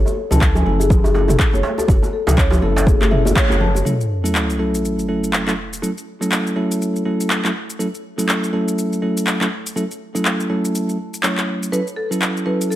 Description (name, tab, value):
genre	afro house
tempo	122 BPM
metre	4/4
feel	swing 58% on 16ths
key	F# minor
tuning	A4 = 440 Hz
part	marimba with medium mallets	arpeggios	0.0-3.7 s	G#4 to A5	-23 LUFS	left 4 dB	sidechain pumping, digital delay
part	warm sub bass	bass	0.0-3.8 s	F#1 to C#2	-18 LUFS	equal	tube saturation, sidechain pumping
part	deep house drum kit	drums	0.1-12.8 s	handclaps, shaker, toms	-22 LUFS	equal	overdrive
part	congas	percussion	0.1-3.8 s	none	-24 LUFS	left 1 dB	none
part	djembe	percussion	0.1-3.8 s	none	-26 LUFS	right 3 dB	none
part	bell-like tine electric piano	stabs	0.3-12.8 s	F#3 to C#5	-21 LUFS	right 1 dB	sidechain pumping, digital delay
part	electronic kick drum	drums	0.4-3.5 s	none	-16 LUFS	equal	overdrive
part	sub drop	sound effects	3.9-5.8 s	none	-24 LUFS	equal	none
part	marimba with medium mallets	melody	11.7-12.8 s	A4 to B4	-24 LUFS	equal	digital delay
room	light reverb, small room ambience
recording	none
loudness	-16 LUFS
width	side -14 dB against mid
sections	0.0-3.9 A section; 3.9-12.8 B section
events	band accent 3.4; impact 3.9-5.8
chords	0.0 A/F#; 3.9 F#m7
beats	0.41 0.91 1.40 | 1.89 2.38 2.87 3.36 | 3.85 4.35 4.84 5.33 | 5.82 6.31 6.81 7.30 | 7.79 8.28 8.77 9.27 | 9.76 10.25 10.74 11.23 | 11.72 12.22 12.71